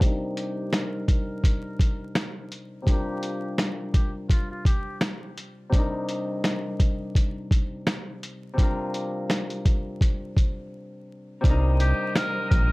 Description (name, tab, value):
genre	hip hop, boom-bap hip-hop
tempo	84 BPM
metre	4/4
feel	swing 56% on 16ths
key	C minor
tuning	A4 = 440 Hz
part	Celtic harp	accompaniment	0.0-12.7 s	C3 to Bb4	-31 LUFS	left 1 dB	high-pass filter, low-pass filter
part	lo-fi sampler-style drum kit	drums	0.0-12.7 s	hi-hat, kick drum, snare drum	-22 LUFS	equal	none
part	trumpet with metal mute	melody	0.4-5.0, 11.8-12.7 s	F4 to Bb4	-34 LUFS	equal	high-pass filter, low-pass filter
part	round analog bass	bass	11.4-12.7 s	Bb1 to C2	-21 LUFS	equal	none
part	muted studio string section	sustained chords	11.5-12.7 s	C5 to Eb6	-39 LUFS	right 1 dB	high-pass filter, low-pass filter
room	little or no reverb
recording	dry, gritty hardware recording, vinyl crackle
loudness	-23 LUFS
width	side -23 dB against mid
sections	0.0-11.4 A section; 11.4-12.7 B section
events	filter sweep 0.0-11.4; break 10.7-11.4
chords	0.0 Cm7; 2.9 Gm7/C; 5.7 Cm7; 8.6 Gm7/C; 11.4 Cm7